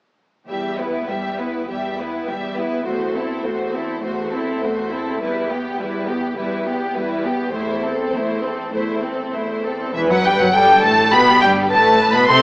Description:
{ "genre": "quick classical-period movement for string orchestra", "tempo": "102 BPM", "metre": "4/4", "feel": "rubato", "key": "E minor", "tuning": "A4 = 440 Hz", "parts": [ { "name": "rich symphonic violin section", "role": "melody", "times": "0.5-12.4 s", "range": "G4 to C6", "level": "-19 LUFS", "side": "left 1 dB", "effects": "none" }, { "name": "rich symphonic violin section", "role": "second line", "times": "0.5-12.4 s", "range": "C4 to B4", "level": "-23 LUFS", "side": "equal", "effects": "none" }, { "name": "rich studio viola section", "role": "accompaniment", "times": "0.5-12.4 s", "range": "E3 to C4", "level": "-23 LUFS", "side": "equal", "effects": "none" }, { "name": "rich symphonic cello section", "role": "bass", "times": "0.5-12.4 s", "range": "E2 to C3", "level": "-27 LUFS", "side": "equal", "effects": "none" }, { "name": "rich symphonic double bass section", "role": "bass", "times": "9.9-12.4 s", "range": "E1 to C2", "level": "-30 LUFS", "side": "equal", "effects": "none" } ], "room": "wet recital hall reverb, RT60 1.5 s", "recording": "recorded in a church or concert hall, small speaker sound", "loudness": "-16 LUFS", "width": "side -23 dB against mid", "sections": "0.5-9.9 A section; 9.9-12.4 B section", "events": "none", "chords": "0.5 Em; 2.9 F#m7b5/E; 5.2 Em; 7.5 Am/E; 9.9 Em", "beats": "| 0.47 1.07 1.67 2.27 | 2.85 3.44 4.02 4.60 | 5.19 5.77 6.36 6.94 | 7.53 8.13 8.72 9.32 | 9.94 10.53 11.12 11.71 | 12.29" }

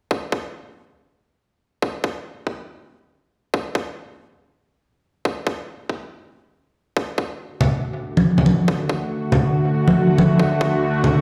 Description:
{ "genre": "deep dubstep", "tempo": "140 BPM", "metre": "4/4", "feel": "swing 59% on 16ths, half-time", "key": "unclear", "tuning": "A4 = 442 Hz", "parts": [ { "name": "electronic kick drum", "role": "drums", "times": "0.1-10.7 s", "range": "none", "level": "-25 LUFS", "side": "equal", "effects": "high-pass filter on kick" }, { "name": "bowed-like drone", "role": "sustained chords", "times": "7.8-11.2 s", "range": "D3 to F#4", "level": "-22 LUFS", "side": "equal", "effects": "built-in reverb" }, { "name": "congas", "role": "percussion", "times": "7.6-11.1 s", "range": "none", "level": "-20 LUFS", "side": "equal", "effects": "dub echo" } ], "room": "moderate spring reverb, RT60 2.0 s", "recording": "played on a big sound system in a bare room, large studio reverb", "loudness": "-21 LUFS", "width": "mono", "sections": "0.1-11.2 A section", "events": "none", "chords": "0.1 N.C.; 7.0 D", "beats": "| 0.11 0.54 0.97 1.40 | 1.82 2.25 2.68 3.11 | 3.54 3.97 4.40 4.82 | 5.25 5.68 6.11 6.54 | 6.97 7.40 7.82 8.25 | 8.68 9.11 9.54 9.97 | 10.40 10.82" }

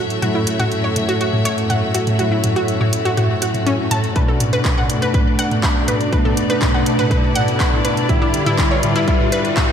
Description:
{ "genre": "melodic techno", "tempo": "122 BPM", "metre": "4/4", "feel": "straight", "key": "F# phrygian", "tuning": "A4 = 439 Hz", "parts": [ { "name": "dark studio string section", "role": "sustained chords", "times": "0.0-9.7 s", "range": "A3 to E5", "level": "-24 LUFS", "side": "left 2 dB", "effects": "sidechain pumping" }, { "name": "analog pluck", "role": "arpeggios", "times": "0.0-9.6 s", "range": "C#4 to B5", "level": "-22 LUFS", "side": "equal", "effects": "chorus, cassette tape, sidechain pumping, ping-pong delay" }, { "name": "analog synth brass", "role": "stabs", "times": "0.0-9.7 s", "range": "A2 to E4", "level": "-21 LUFS", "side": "equal", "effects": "chorus, cassette tape, sidechain pumping, ping-pong delay" }, { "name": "swarming drone", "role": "drone", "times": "0.0-9.7 s", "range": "F#2", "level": "-31 LUFS", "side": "right 1 dB", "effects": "none" }, { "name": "riser", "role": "sound effects", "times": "1.4-9.7 s", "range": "none", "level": "-29 LUFS", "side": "equal", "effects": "none" }, { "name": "deep dark ambient pad", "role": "texture", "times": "0.0-9.7 s", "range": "D4 to A5", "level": "-28 LUFS", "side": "right 1 dB", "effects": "chorus, built-in reverb, sidechain pumping" }, { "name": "house drum kit", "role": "drums", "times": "0.1-9.7 s", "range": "handclaps, hi-hat, toms", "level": "-22 LUFS", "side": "equal", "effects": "overdrive, gated reverb" }, { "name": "electronic kick drum", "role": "drums", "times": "4.2-9.7 s", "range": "none", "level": "-18 LUFS", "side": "equal", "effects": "overdrive" } ], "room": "moderate lush hall reverb, RT60 1.9 s", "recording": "bright 1980s-style digital production", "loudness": "-15 LUFS", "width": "side -8 dB against mid", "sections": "0.0-9.7 A section", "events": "build-up 0.0-9.7; filter sweep on analog polysynth 0.0-9.7; riser 1.4-9.7", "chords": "0.0 F#m7; 4.2 Bm7; 8.1 Em7", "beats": "| 0.22 0.71 1.21 1.70 | 2.19 2.68 3.17 3.67 | 4.16 4.65 5.14 5.63 | 6.12 6.62 7.11 7.60 | 8.09 8.58 9.08 9.57" }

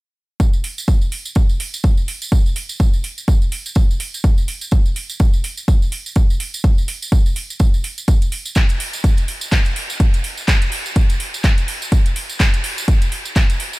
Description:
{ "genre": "piano house", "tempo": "125 BPM", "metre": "4/4", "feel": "swing 58% on 16ths", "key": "none", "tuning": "none", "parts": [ { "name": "electronic kick drum", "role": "drums", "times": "0.4-13.5 s", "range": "none", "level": "-14 LUFS", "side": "equal", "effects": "small room ambience" }, { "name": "tambourine", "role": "percussion", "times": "0.4-13.8 s", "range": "none", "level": "-31 LUFS", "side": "right 3 dB", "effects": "none" }, { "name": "house drum kit", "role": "drums", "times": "0.6-13.7 s", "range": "handclaps, hi-hat", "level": "-24 LUFS", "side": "right 1 dB", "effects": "small room ambience" } ], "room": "little or no reverb", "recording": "none", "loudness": "-15 LUFS", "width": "side -22 dB against mid", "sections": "0.4-13.8 A section", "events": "none", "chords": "none", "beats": "| 0.40 0.88 1.36 1.84 | 2.32 2.80 3.28 3.76 | 4.24 4.72 5.20 5.68 | 6.16 6.64 7.12 7.60 | 8.08 8.56 9.04 9.52 | 10.00 10.48 10.96 11.44 | 11.92 12.40 12.88 13.36" }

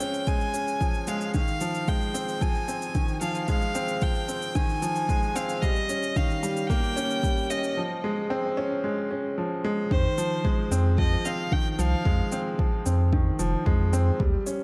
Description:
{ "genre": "piano and strings electronica", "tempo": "112 BPM", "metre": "4/4", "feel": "straight", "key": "F minor", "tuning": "A4 = 440 Hz", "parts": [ { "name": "rich violin", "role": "melody", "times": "0.0-12.3 s", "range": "C5 to Ab5", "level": "-33 LUFS", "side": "equal", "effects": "none" }, { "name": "bright upright piano", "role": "riff", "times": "0.0-14.6 s", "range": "Eb3 to Db4", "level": "-31 LUFS", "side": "equal", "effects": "delay" }, { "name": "shaker", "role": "drums", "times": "0.0-14.6 s", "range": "none", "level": "-42 LUFS", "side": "equal", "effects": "none" }, { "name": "electronic kick drum", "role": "drums", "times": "0.3-14.3 s", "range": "none", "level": "-28 LUFS", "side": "equal", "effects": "none" }, { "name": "warm sub bass", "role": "bass", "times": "9.9-14.4 s", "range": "F1 to F2", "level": "-26 LUFS", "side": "equal", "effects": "sidechain pumping" } ], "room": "moderate concert hall reverb, RT60 2.1 s", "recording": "none", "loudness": "-26 LUFS", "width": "mono", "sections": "0.0-9.9 A section; 9.9-14.6 B section", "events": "build-up 0.0-9.9; drop 9.9-14.6", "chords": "0.0 Dbmaj7; 1.3 Fm7; 5.6 Eb7; 7.8 Dbmaj7; 9.9 Fm7", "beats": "0.27 0.81 | 1.34 1.88 2.42 2.95 | 3.49 4.02 4.56 5.09 | 5.63 6.17 6.70 7.24 | 7.77 8.31 8.84 9.38 | 9.91 10.45 10.99 11.52 | 12.06 12.59 13.13 13.66 | 14.20" }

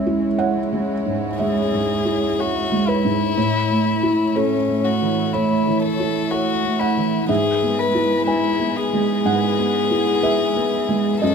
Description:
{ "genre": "neoclassical piano and strings", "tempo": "61 BPM", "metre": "4/4", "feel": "rubato", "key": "unclear", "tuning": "A4 = 437 Hz", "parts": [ { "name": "dark cello", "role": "second line", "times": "0.0-11.3 s", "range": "G#3 to A3", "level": "-27 LUFS", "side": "right 9 dB", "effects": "none" }, { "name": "felt-muted upright piano", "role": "accompaniment", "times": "0.0-11.3 s", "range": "C#2 to G#5", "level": "-20 LUFS", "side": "right 2 dB", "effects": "none" }, { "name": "warm chamber string section", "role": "sustained chords", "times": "0.0-11.3 s", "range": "F#3 to C#5", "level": "-30 LUFS", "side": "left 1 dB", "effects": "none" }, { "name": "warm violin", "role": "melody", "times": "1.4-11.3 s", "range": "C#4 to B4", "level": "-21 LUFS", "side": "left 6 dB", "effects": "none" } ], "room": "light reverb", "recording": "minimal, uncompressed stereo recording", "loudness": "-17 LUFS", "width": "side -6 dB against mid", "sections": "0.0-11.3 A section", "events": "none", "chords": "0.0 C#m; 3.4 A; 7.3 E/G#", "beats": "0.39 1.39 2.38 | 3.37 4.36 5.34 6.32 | 7.29 8.27 9.26 10.24 | 11.22" }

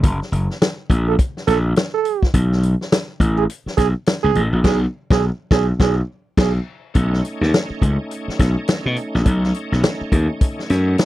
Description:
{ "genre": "funk", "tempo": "104 BPM", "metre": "4/4", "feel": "swing 60% on 16ths", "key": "unclear", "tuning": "A4 = 440 Hz", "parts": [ { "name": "gritty slap bass", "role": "bass", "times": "0.0-10.9 s", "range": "F#1 to B2", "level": "-17 LUFS", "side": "equal", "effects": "overdrive" }, { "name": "vintage drum kit", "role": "drums", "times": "0.0-11.1 s", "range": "crash cymbal, hi-hat, kick drum, snare drum", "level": "-18 LUFS", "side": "left 1 dB", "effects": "none" }, { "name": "warm trombone", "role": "second line", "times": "1.1-6.5 s", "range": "G#4 to A4", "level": "-19 LUFS", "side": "right 11 dB", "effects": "none" }, { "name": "bright tonewheel organ", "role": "sustained chords", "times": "6.9-11.1 s", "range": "A3 to D#4", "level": "-28 LUFS", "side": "equal", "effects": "slow rotary speaker, overdrive, chorus vibrato" } ], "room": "little or no reverb", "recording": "dry, close 1970s-style studio recording", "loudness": "-16 LUFS", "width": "side -15 dB against mid", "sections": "0.0-6.9 A section; 6.9-11.1 B section", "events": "band accent 4.6-6.9", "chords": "0.0 F#(#9); 2.3 N.C.; 6.9 B9", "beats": "| 0.04 0.61 1.19 1.76 | 2.34 2.92 3.49 4.07 | 4.64 5.22 5.80 6.37 | 6.95 7.53 8.10 8.68 | 9.26 9.83 10.41 10.99" }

